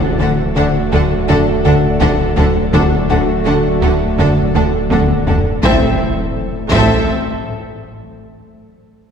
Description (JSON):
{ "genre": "cinematic, hybrid orchestral and electronic film score", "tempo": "83 BPM", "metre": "4/4", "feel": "straight", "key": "unclear", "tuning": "A4 = 440 Hz", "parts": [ { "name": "ethereal airy pad", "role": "sustained chords", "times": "0.0-6.0 s", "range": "F#3 to D5", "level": "-23 LUFS", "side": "equal", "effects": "ensemble chorus, built-in reverb" }, { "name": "mellow French horn section", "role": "sustained chords", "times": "0.0-6.0 s", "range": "A3 to F#4", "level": "-20 LUFS", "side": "right 3 dB", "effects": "none" }, { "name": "resonant blip pluck", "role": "arpeggios", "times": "0.0-5.1 s", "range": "D3 to A3", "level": "-28 LUFS", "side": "right 1 dB", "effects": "none" }, { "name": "plucky analog bass", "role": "riff", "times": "0.0-5.5 s", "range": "D2 to D3", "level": "-19 LUFS", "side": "left 3 dB", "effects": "none" }, { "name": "punchy sub bass", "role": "bass", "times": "0.0-7.1 s", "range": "D1 to A1", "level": "-24 LUFS", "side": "equal", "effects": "none" }, { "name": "rich studio violin section", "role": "melody", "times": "0.2-7.1 s", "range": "E5 to F#5", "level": "-24 LUFS", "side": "left 4 dB", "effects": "none" }, { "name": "rich symphonic violin section", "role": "second line", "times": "0.2-7.1 s", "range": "A4", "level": "-23 LUFS", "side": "equal", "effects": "none" }, { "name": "clear symphonic viola section", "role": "accompaniment", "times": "0.2-7.1 s", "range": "C4 to D4", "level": "-23 LUFS", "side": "right 1 dB", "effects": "none" }, { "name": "rich studio cello section", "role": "bass", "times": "0.2-7.1 s", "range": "A2 to D3", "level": "-21 LUFS", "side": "right 1 dB", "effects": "none" }, { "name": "rich symphonic double bass section", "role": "bass", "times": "0.2-7.1 s", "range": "A1 to D2", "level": "-21 LUFS", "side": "right 2 dB", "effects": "none" }, { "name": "solo taiko drums", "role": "drums", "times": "1.3-8.1 s", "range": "none", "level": "-21 LUFS", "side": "equal", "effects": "none" }, { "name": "impact", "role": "sound effects", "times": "5.6-8.5 s", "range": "none", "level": "-24 LUFS", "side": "equal", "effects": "none" } ], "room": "wet concert hall reverb, RT60 2.4 s", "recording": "heard from further back in the room", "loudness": "-12 LUFS", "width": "side -7 dB against mid", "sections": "0.0-5.6 A section; 5.6-8.5 B section", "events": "drum fill 4.5-5.6; impact 5.6-8.5", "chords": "0.0 D; 5.6 Am" }